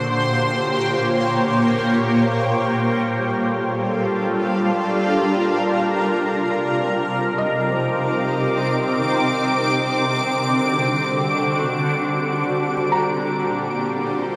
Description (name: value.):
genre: ambient.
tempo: free time.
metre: none.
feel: none.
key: G minor.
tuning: A4 = 439 Hz.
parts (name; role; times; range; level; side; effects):
shimmering ambient pad; sustained chords; 0.0-14.4 s; Bb2 to D6; -21 LUFS; equal; chorus, built-in reverb, phaser.
felt-muted upright piano; arpeggios; 0.0-14.4 s; D3 to Bb5; -32 LUFS; equal; diffuse ambient delay.
bowed-like drone; drone; 0.0-14.4 s; G3 to Bb3; -37 LUFS; equal; none.
room: wet huge ambient reverb, RT60 8.2 s.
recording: none.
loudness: -20 LUFS.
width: mono.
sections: 0.0-2.3 A section; 2.3-14.4 A section.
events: none.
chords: 0.0 Bbm6; 2.3 Gm7; 5.8 Cm7; 9.2 D7; 12.7 Bb5.